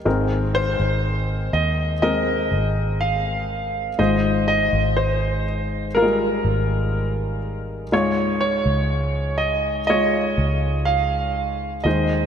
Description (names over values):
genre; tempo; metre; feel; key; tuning
pop ballad; 61 BPM; 4/4; straight; unclear; A4 = 440 Hz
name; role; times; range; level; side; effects
clear upright piano; accompaniment; 0.0-12.3 s; Ab2 to Db5; -24 LUFS; left 2 dB; none
vintage muted fingered electric bass; bass; 0.1-12.3 s; Ab1 to Eb2; -24 LUFS; equal; none
clear grand piano; melody; 0.5-12.3 s; Bb4 to F5; -23 LUFS; right 2 dB; lush chorus, diffuse ambient delay
room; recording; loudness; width
moderate lush hall reverb, RT60 2.9 s; dreamy mix soaked in reverb; -19 LUFS; side -8 dB against mid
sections
0.0-12.3 A section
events
none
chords
0.1 Abadd9; 4.0 Fm/Ab; 7.9 Db